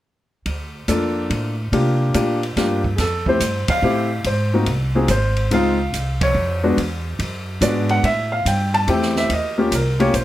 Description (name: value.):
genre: jazz piano trio.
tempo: 143 BPM.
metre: 3/4.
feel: swing 67% on 8ths.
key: F major.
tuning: A4 = 441 Hz.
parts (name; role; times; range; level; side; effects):
upright bass; bass; 0.5-10.2 s; Ab1 to C3; -22 LUFS; equal; none.
open jazz drum kit; drums; 0.5-10.2 s; hi-hat, kick drum, ride cymbal, snare drum; -27 LUFS; right 1 dB; none.
warm baby grand piano; melody; 0.9-10.2 s; Ab3 to A5; -19 LUFS; left 1 dB; none.
room: moderate club reverb, RT60 0.5 s.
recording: none.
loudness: -17 LUFS.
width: side -14 dB against mid.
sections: 0.5-3.0 A section; 3.0-10.2 B section.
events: band accent 3.6, 6.1.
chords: 0.5 Dm; 1.7 C7sus4; 3.0 Fmaj9; 4.2 Ab; 5.5 Dbmaj7; 6.8 E7; 8.0 Am7; 9.3 Eb9.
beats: | 0.46 0.88 1.30 | 1.72 2.15 2.57 | 2.99 3.41 3.83 | 4.25 4.67 5.09 | 5.51 5.93 6.35 | 6.77 7.20 7.62 | 8.04 8.46 8.88 | 9.30 9.72 10.14.